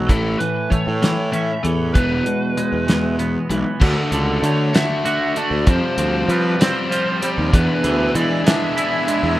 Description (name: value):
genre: indie rock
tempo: 64 BPM (dotted quarters)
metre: 6/8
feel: straight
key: unclear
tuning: A4 = 442 Hz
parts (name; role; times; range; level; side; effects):
- biting overdriven guitar; riff; 0.0-9.4 s; A2 to G#4; -23 LUFS; left 4 dB; none
- twangy electric guitar; riff; 0.0-9.4 s; E2 to F#4; -24 LUFS; right 4 dB; lush chorus
- fuzz picked electric bass; bass; 0.0-9.4 s; E1 to F3; -21 LUFS; equal; overdrive
- biting lead guitar; melody; 0.1-9.3 s; A4 to E5; -24 LUFS; equal; overdrive, plate reverb, digital delay
- cloth-damped thuddy drum kit; drums; 0.1-9.2 s; crash cymbal, hi-hat, kick drum, snare drum; -18 LUFS; equal; none
- phased analog pad; sustained chords; 7.5-9.4 s; D4 to E6; -26 LUFS; right 2 dB; phaser, chorus
room: moderate studio reverb, RT60 0.5 s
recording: rough home demo mix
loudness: -16 LUFS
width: side -15 dB against mid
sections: 0.0-3.8 A section; 3.8-9.4 B section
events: none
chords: 0.1 A; 2.0 E; 3.8 Dmaj7; 5.7 Fsus2; 7.5 E7